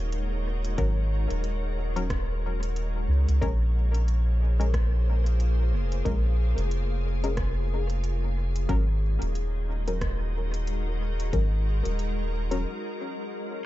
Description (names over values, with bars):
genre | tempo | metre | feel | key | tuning
ambient dub | 91 BPM | 4/4 | swing 59% on 16ths | unclear | A4 = 438 Hz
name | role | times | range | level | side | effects
soft additive organ-like pad | sustained chords | 0.0-13.7 s | Ab3 to Db5 | -35 LUFS | left 2 dB | ensemble chorus, built-in reverb
soft dub sub bass | bass | 0.0-12.6 s | Eb1 to Db2 | -25 LUFS | equal | none
organic electronic drum kit | drums | 0.1-12.6 s | hi-hat, rim click | -42 LUFS | equal | overdrive, dub echo
filtered dub chord stab | stabs | 0.8-12.6 s | Gb3 to Bb4 | -36 LUFS | left 4 dB | chorus, dub echo
electronic kick drum | drums | 0.8-11.5 s | none | -30 LUFS | equal | none
room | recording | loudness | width
little or no reverb | dark, warm production, nothing above 7.8 kHz | -24 LUFS | side -15 dB against mid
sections
0.0-13.7 A section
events
break 12.7-13.7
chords
0.0 Ab9sus4; 3.4 Bbm7; 8.7 Ab9sus4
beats
0.12 | 0.78 1.44 2.10 2.76 | 3.42 4.08 4.74 5.40 | 6.06 6.72 7.38 8.04 | 8.70 9.35 10.01 10.67 | 11.33 11.99 12.65 13.31